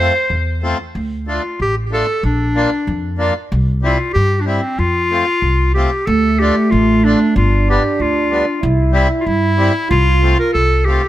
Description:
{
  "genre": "alpine folk, alpine dance band",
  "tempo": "94 BPM",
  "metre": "2/4",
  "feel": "straight",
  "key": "F major",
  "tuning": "A4 = 440 Hz",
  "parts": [
    { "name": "bright clarinet", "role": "melody", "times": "0.0-11.1 s", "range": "C4 to C5", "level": "-18 LUFS", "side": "left 1 dB", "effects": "digital delay" },
    { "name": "accordion", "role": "accompaniment", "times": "0.0-11.0 s", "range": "G3 to F4", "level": "-20 LUFS", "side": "left 2 dB", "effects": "none" },
    { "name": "upright bass", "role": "bass", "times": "0.0-11.0 s", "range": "G1 to G2", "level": "-16 LUFS", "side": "equal", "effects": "none" },
    { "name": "mellow horn-like synth lead", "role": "second line", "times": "6.1-10.9 s", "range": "A3 to F4", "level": "-17 LUFS", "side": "right 2 dB", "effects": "chorus" }
  ],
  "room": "moderate echo chamber reverb, RT60 1.4 s",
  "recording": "none",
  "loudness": "-13 LUFS",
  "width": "side -14 dB against mid",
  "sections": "0.0-6.1 A section; 6.1-11.1 B section",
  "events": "none",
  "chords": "0.0 F; 1.0 Dm; 2.2 Bb; 3.5 C; 4.8 F; 6.1 Dm; 7.4 G7; 8.6 C; 9.9 F/C"
}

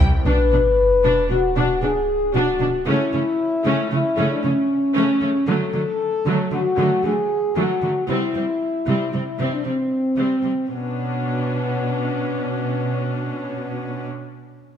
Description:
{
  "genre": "cinematic",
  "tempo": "115 BPM",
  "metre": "5/4",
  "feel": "straight",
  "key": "unclear",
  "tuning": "A4 = 440 Hz",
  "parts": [
    { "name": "rich symphonic viola section", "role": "accompaniment", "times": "0.0-14.1 s", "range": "F#3 to D4", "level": "-25 LUFS", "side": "right 1 dB", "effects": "none" },
    { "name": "warm French horn section", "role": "sustained chords", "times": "0.2-14.1 s", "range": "B3 to B4", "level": "-21 LUFS", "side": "left 2 dB", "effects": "none" },
    { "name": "rich symphonic cello section", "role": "bass", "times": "0.3-14.1 s", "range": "B2 to D3", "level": "-26 LUFS", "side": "right 3 dB", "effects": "none" },
    { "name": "sub drop", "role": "sound effects", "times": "0.3-2.9 s", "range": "none", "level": "-24 LUFS", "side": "equal", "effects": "none" }
  ],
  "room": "moderate scoring stage reverb, RT60 1.9 s",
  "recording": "none",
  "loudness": "-18 LUFS",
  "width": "side -8 dB against mid",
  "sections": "0.3-10.7 A section; 10.7-13.3 B section",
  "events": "impact 0.3-2.9",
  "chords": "0.3 Bm; 2.9 A/C#; 5.5 D; 8.1 C; 10.7 Bmadd9"
}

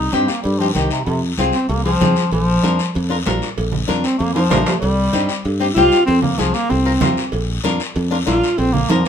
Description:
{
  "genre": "latin, cumbia",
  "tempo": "192 BPM",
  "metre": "4/4",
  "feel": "straight",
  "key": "unclear",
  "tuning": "A4 = 440 Hz",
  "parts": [
    { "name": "clear bass clarinet", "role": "melody", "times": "0.0-9.1 s", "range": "C3 to F4", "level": "-18 LUFS", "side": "equal", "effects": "none" },
    { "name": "modern bright fingered electric bass", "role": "bass", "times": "0.0-9.0 s", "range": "Bb1 to G2", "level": "-21 LUFS", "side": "equal", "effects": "none" },
    { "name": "flamenco guitar", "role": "accompaniment", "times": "0.1-9.1 s", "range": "C4 to Bb4", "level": "-21 LUFS", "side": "left 4 dB", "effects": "none" },
    { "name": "congas", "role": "percussion", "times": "0.1-9.1 s", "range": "none", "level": "-24 LUFS", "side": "right 3 dB", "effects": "none" },
    { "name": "guiro", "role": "percussion", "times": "0.1-9.1 s", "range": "none", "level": "-28 LUFS", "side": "left 6 dB", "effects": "none" },
    { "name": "cowbell and timbales", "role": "percussion", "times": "0.4-9.0 s", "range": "none", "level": "-25 LUFS", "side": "right 4 dB", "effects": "none" }
  ],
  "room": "moderate studio reverb, RT60 0.8 s",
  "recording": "minimal, uncompressed stereo recording",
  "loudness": "-15 LUFS",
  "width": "side -8 dB against mid",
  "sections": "0.0-9.1 A section",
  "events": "bass clarinet solo 0.0-9.1; drum fill 4.4-4.8, 8.9",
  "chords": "0.0 Cm; 1.1 Fm; 2.3 Bb; 4.8 Cm; 6.1 Fm; 7.3 Bb"
}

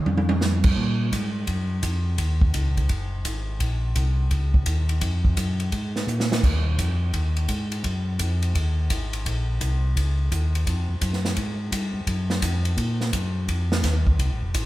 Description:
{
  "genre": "soul jazz organ trio",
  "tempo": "170 BPM",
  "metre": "4/4",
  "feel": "swing 65% on 8ths",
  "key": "Bb minor",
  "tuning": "A4 = 440 Hz",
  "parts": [
    { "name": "mellow tonewheel organ", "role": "bass", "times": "0.1-14.7 s", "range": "F1 to Bb2", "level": "-23 LUFS", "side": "equal", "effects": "overdrive, chorus vibrato, slow rotary speaker" },
    { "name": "swinging big-band drum kit", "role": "drums", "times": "0.1-14.7 s", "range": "crash cymbal, hi-hat, kick drum, ride cymbal, snare drum, toms", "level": "-25 LUFS", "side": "right 1 dB", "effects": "none" }
  ],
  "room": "moderate studio reverb, RT60 0.7 s",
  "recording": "heard from further back in the room",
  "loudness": "-21 LUFS",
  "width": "side -16 dB against mid",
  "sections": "0.8-14.7 A section",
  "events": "drum fill 0.0-0.4, 6.1-6.4",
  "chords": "none"
}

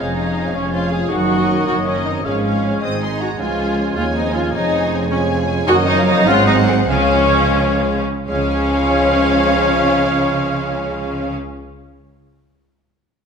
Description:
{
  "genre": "classical, dramatic, fast romantic movement for symphony orchestra",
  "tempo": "80-107 BPM (dotted quarters)",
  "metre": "6/8",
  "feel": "straight",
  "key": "Db major",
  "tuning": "A4 = 438 Hz",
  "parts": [
    { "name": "clear symphonic violin section", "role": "melody", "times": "0.0-11.3 s", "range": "Eb5 to Eb6", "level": "-27 LUFS", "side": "left 3 dB", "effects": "none" },
    { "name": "mellow clarinet", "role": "second line", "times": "0.0-11.3 s", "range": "C5 to Eb5", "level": "-29 LUFS", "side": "left 3 dB", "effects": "none" },
    { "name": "mellow silver concert flute", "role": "second line", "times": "0.0-11.3 s", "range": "C5 to Ab5", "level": "-26 LUFS", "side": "left 3 dB", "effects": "none" },
    { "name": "warm oboe", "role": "second line", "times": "0.0-11.3 s", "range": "Eb5 to Ab5", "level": "-27 LUFS", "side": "right 2 dB", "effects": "none" },
    { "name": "warm symphonic violin section", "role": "second line", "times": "0.0-11.3 s", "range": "Ab4 to Eb5", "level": "-27 LUFS", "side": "left 2 dB", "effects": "none" },
    { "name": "warm bassoon", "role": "accompaniment", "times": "0.0-11.3 s", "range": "Ab3 to Bb3", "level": "-27 LUFS", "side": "right 4 dB", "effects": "none" },
    { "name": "warm studio viola section", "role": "accompaniment", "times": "0.0-11.3 s", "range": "C4 to Ab4", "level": "-20 LUFS", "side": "equal", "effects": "none" },
    { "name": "mellow French horn section", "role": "sustained chords", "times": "0.0-11.3 s", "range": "Ab3 to F4", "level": "-25 LUFS", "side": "left 2 dB", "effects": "none" },
    { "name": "mellow trombone section", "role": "sustained chords", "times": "0.0-11.3 s", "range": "Eb3 to Eb4", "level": "-26 LUFS", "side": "right 1 dB", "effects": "none" },
    { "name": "rich symphonic cello section", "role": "bass", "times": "0.0-11.3 s", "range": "Db2 to Db3", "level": "-22 LUFS", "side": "right 1 dB", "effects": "none" },
    { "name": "rich symphonic double bass section", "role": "bass", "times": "0.0-11.3 s", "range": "F1 to Eb2", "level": "-24 LUFS", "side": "right 2 dB", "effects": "none" }
  ],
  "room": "wet scoring stage reverb, RT60 1.6 s",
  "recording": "minimal, uncompressed stereo recording",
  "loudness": "-14 LUFS",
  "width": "side -6 dB against mid",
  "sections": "0.0-8.3 A section; 8.3-11.2 B section",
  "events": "slowing down 5.1-8.3",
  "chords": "0.0 Db/F; 1.1 Ebm7/Gb; 2.3 Db/Ab; 2.8 Ab; 3.4 Db; 4.5 Db/F; 5.7 Ebm7/Gb; 6.3 Ab7; 6.9 Db"
}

